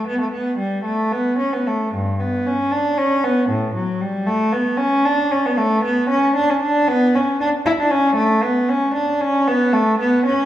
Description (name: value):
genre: classical, baroque-style suite movement for unaccompanied cello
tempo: 77 BPM (dotted quarters)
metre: 12/8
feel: rubato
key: unclear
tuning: A4 = 440 Hz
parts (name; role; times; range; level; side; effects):
- warm cello; solo; 0.0-10.5 s; G2 to E4; -16 LUFS; equal; none
room: wet recital hall reverb, RT60 1.6 s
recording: recorded in a church or concert hall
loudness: -16 LUFS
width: side -12 dB against mid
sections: 0.0-10.5 A section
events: none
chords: none